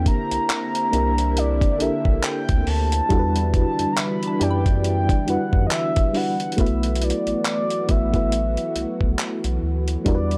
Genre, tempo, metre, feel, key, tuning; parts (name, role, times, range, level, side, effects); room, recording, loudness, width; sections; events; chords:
contemporary R&B; 69 BPM; 4/4; swing 58% on 16ths; A4 = 440 Hz
mellow horn-like synth lead; melody; 0.0-10.4 s; D5 to B5; -28 LUFS; equal; chorus, phaser
FM electric piano with tremolo; accompaniment; 0.0-10.4 s; G3 to D5; -27 LUFS; equal
lush unison pad; sustained chords; 0.0-10.4 s; D3 to F#4; -33 LUFS; equal; chorus
round analog bass; bass; 0.0-10.4 s; A1 to F#2; -26 LUFS; equal
mallet-like synth pluck; texture; 0.0-6.4 s; C5 to B5; -40 LUFS; equal; chorus, tape echo
dusty soul sampler-style drum kit; drums; 0.1-10.4 s; handclaps, hi-hat, kick drum; -25 LUFS; equal
little or no reverb; dry, gritty hardware recording; -21 LUFS; mono
0.0-6.6 A section; 6.6-10.4 B section
0.0 C13; 3.1 Em9; 6.6 B7sus4